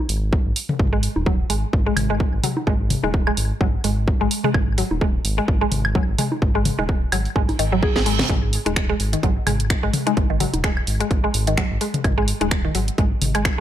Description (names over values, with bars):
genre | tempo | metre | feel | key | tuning
minimal techno | 128 BPM | 4/4 | swing 56% on 16ths | unclear | A4 = 440 Hz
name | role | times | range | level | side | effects
round analog bass | bass | 0.1-13.5 s | D#1 to G#1 | -24 LUFS | equal | sidechain pumping
house drum kit | drums | 0.1-13.6 s | finger snaps, hi-hat, snare drum | -26 LUFS | right 2 dB | overdrive
electronic kick drum | drums | 0.3-13.6 s | none | -21 LUFS | equal | overdrive
electronic toms, bongos and woodblock | percussion | 0.7-13.4 s | none | -26 LUFS | left 2 dB | ping-pong delay
mallet-like synth pluck | riff | 0.9-13.4 s | D#3 to G#4 | -24 LUFS | equal | chorus, phaser, sidechain pumping, dub echo
reverse cymbal | sound effects | 7.6-8.3 s | none | -28 LUFS | right 7 dB | none
room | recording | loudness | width
little or no reverb | none | -18 LUFS | side -11 dB against mid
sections
0.0-13.6 A section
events
reverse cymbal 7.6-8.3; drum fill 7.9-8.3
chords
0.0 G#5